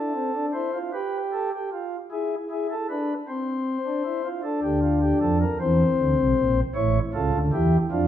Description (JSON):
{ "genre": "classical, baroque-style 3-part fugue for pipe organ", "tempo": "52 BPM (dotted quarters)", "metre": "6/8", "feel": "straight", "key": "unclear", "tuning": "A4 = 441 Hz", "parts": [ { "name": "pipe organ, flutes", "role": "solo", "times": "0.0-8.1 s", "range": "A1 to C#5", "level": "-22 LUFS", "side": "equal", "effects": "none" } ], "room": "wet recital hall reverb, RT60 1.5 s", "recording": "nothing above 10.4 kHz", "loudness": "-22 LUFS", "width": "side -10 dB against mid", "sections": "0.0-8.1 A section", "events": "none", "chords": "0.0 Am; 0.9 G; 2.1 E7; 3.3 Cadd9; 4.4 Dm; 5.6 C; 6.8 A7", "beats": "0.94 | 2.11 3.27 | 4.44 5.60 | 6.76 7.92" }